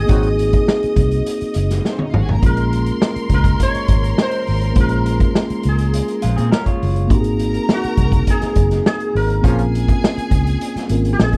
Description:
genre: lush 1970s-style soul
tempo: 103 BPM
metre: 4/4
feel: straight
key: Bb minor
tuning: A4 = 439 Hz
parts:
  - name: sitar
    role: melody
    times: 0.0-11.4 s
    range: Gb4 to Db5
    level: -26 LUFS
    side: equal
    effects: none
  - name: clear studio string section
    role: second line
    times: 0.0-11.4 s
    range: C4 to Eb6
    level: -32 LUFS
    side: equal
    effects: none
  - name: mellow tine electric piano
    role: accompaniment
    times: 0.0-11.4 s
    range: Ab3 to Bb4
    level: -25 LUFS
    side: equal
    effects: none
  - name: vintage muted fingered electric bass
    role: bass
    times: 0.0-11.3 s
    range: Gb1 to Bb2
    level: -21 LUFS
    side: equal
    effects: none
  - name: warm horn section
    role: stabs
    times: 0.1-0.3, 9.4-9.6 s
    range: F3 to Gb4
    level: -27 LUFS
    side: equal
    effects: none
  - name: vintage drum kit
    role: drums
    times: 0.1-11.4 s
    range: hi-hat, kick drum, snare drum, toms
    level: -20 LUFS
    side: equal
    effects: none
  - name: electric guitar through a small old amp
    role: riff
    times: 6.2-7.1 s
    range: Ab3 to Db5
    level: -28 LUFS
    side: equal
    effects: none
room: little or no reverb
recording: none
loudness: -17 LUFS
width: mono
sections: 0.0-11.4 A section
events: band accent 0.1-2.4, 9.4-11.4; drum fill 1.8-2.4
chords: 0.0 Ab7; 2.4 Bbm9; 7.1 Ab7; 9.4 Bbm7

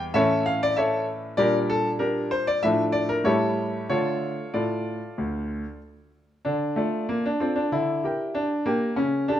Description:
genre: classical-period piano sonatina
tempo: 95 BPM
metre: 4/4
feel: straight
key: D minor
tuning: A4 = 440 Hz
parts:
  - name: clear grand piano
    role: solo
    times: 0.0-9.4 s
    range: D2 to A5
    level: -22 LUFS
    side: equal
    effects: none
room: moderate recital hall reverb, RT60 1.6 s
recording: close, detailed microphones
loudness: -22 LUFS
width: side -11 dB against mid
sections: 0.0-6.5 A section; 6.5-9.4 A section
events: none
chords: 0.1 A; 1.4 Gm/Bb; 2.6 Dm/A; 3.3 A7; 3.9 Dm; 7.7 Em7b5/D

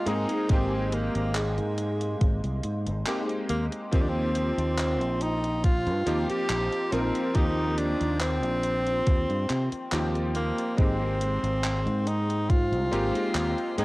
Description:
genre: vaporwave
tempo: 70 BPM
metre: 4/4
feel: swing 53% on 16ths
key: Eb major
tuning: A4 = 440 Hz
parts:
  - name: clear tenor saxophone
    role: melody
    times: 0.0-13.8 s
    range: Ab3 to G4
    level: -29 LUFS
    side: equal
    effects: cassette tape, tape echo
  - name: bright electric grand piano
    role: accompaniment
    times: 0.0-13.8 s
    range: Eb3 to Bb4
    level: -32 LUFS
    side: equal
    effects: ensemble chorus, cassette tape
  - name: warbly tape-like pad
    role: sustained chords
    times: 0.0-13.8 s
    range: Ab3 to C6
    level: -36 LUFS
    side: right 1 dB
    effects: chorus, built-in reverb, vintage 12-bit sampler grit, cassette tape
  - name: fingered electric bass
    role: bass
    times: 0.1-13.8 s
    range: Ab1 to C3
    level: -29 LUFS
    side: equal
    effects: none
  - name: gated 80s digital drum machine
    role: drums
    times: 0.1-13.8 s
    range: handclaps, hi-hat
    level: -34 LUFS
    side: equal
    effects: gated reverb, overdrive, studio reverb, cassette tape
  - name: electronic kick drum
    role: drums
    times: 0.5-12.7 s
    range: none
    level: -23 LUFS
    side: equal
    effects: overdrive, studio reverb, cassette tape
room: light reverb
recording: home recording on cassette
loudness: -24 LUFS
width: side -21 dB against mid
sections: 0.0-13.8 A section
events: none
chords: 0.0 Abmaj7; 3.9 Eb69; 10.8 Abmaj7

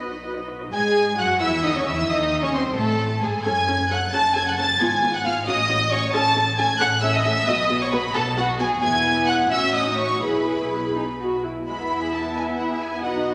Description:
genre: quick classical-period movement for string orchestra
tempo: 88 BPM (dotted quarters)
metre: 6/8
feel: rubato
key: C# minor, E major from 6.1 s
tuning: A4 = 439 Hz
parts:
  - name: warm symphonic violin section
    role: melody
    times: 0.0-13.3 s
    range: E5 to A6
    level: -27 LUFS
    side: equal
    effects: none
  - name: warm symphonic violin section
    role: second line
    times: 0.0-13.3 s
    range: G#3 to A5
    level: -26 LUFS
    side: equal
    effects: none
  - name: dark symphonic viola section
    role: accompaniment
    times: 0.0-13.3 s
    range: G#3 to D#5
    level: -28 LUFS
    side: equal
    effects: none
  - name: dark studio cello section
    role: bass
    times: 0.0-13.3 s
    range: E2 to E4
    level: -33 LUFS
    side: equal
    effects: none
  - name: dark symphonic double bass section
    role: bass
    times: 0.0-13.3 s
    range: E1 to G#2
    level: -36 LUFS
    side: equal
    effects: none
room: wet scoring stage reverb, RT60 1.7 s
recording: none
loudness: -22 LUFS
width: mono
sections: 0.7-11.7 A section; 11.7-13.3 B section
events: none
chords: 0.0 B; 0.7 C#m (rootless); 2.1 Cm; 2.8 N.C.; 3.4 F#m; 4.8 Fdim/Ab; 5.5 F#m/A; 6.1 A; 7.5 B5; 8.8 E; 9.5 F#m/A; 10.2 E/B; 11.0 B5; 11.7 E

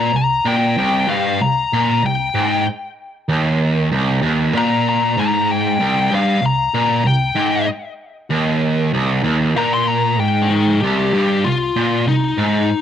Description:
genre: metal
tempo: 96 BPM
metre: 4/4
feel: straight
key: C minor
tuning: A4 = 440 Hz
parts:
  - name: high-gain lead guitar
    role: melody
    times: 0.0-12.8 s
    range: D4 to C6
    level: -18 LUFS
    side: left 4 dB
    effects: distortion, cassette tape, analog delay
  - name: distorted electric guitar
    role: riff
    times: 0.0-12.7 s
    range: C2 to Bb2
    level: -16 LUFS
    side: right 1 dB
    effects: overdrive
room: digital ambience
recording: home recording on cassette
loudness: -15 LUFS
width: side -9 dB against mid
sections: 0.0-10.8 A section; 10.8-12.8 B section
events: lead electric guitar solo 0.0-10.8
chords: 0.0 Cm

